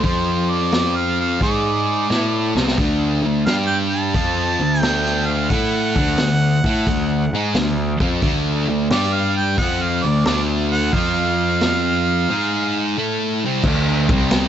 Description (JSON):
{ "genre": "blues rock power trio and southern rock", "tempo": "88 BPM", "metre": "4/4", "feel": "swing 67% on 8ths", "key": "unclear", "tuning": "A4 = 440 Hz", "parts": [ { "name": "clear harmonica", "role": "melody", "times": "0.0-13.0 s", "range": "C5 to A5", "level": "-23 LUFS", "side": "right 2 dB", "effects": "overdrive" }, { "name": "thick fuzz guitar", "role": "riff", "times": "0.0-14.5 s", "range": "C3 to A4", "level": "-20 LUFS", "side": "equal", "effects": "distortion" }, { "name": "fuzz picked electric bass", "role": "bass", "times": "0.0-14.5 s", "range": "C2 to A2", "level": "-22 LUFS", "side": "equal", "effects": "overdrive" }, { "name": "vintage drum kit", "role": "drums", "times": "0.0-14.5 s", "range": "crash cymbal, hi-hat, kick drum, ride cymbal, snare drum", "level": "-22 LUFS", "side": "equal", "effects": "none" } ], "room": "little or no reverb", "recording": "nothing above 7.8 kHz", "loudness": "-16 LUFS", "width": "side -9 dB against mid", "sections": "0.0-13.7 A section", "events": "drum fill 2.1-2.8; break 12.3-13.7", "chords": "0.1 F5; 1.4 G#5; 2.1 D5; 3.5 G5; 4.2 D; 8.9 G5; 9.6 D5; 10.9 F5; 12.3 G#5; 13.0 C6; 13.7 D5", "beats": "| 0.05 0.74 1.42 2.10 | 2.79 3.47 4.15 4.83 | 5.51 6.19 6.87 7.55 | 8.23 8.91 9.59 10.27 | 10.94 11.62 12.30 12.98 | 13.65 14.33" }